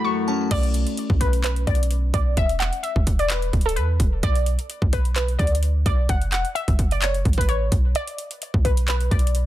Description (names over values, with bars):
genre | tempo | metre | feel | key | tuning
hip hop, trap | 129 BPM | 4/4 | half-time | B minor | A4 = 441 Hz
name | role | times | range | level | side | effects
warbly dusty pluck | melody | 0.0-9.5 s | A4 to C#6 | -27 LUFS | left 1 dB | chorus, phaser
delicate synth tine bell | second line | 0.0-0.5 s | A5 to B5 | -36 LUFS | right 4 dB | chorus, ping-pong delay
Celtic harp | accompaniment | 0.0-3.2 s | F#2 to D4 | -27 LUFS | left 3 dB | none
glass harmonica | sustained chords | 0.0-0.5 s | E4 to A4 | -37 LUFS | left 2 dB | none
clean 808-style bass | bass | 0.5-9.5 s | D1 to E2 | -22 LUFS | equal | none
trap drum kit | drums | 0.5-9.5 s | crash cymbal, handclaps, hi-hat, kick drum | -23 LUFS | equal | none
room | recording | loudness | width
little or no reverb | dense, heavily limited modern master | -19 LUFS | side -14 dB against mid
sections
0.5-9.5 A section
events
break 0.0-0.5, 8.0-8.4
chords
0.0 F#m7; 0.5 Bm; 2.4 E5; 4.2 Bm; 6.1 F#m; 8.0 Bm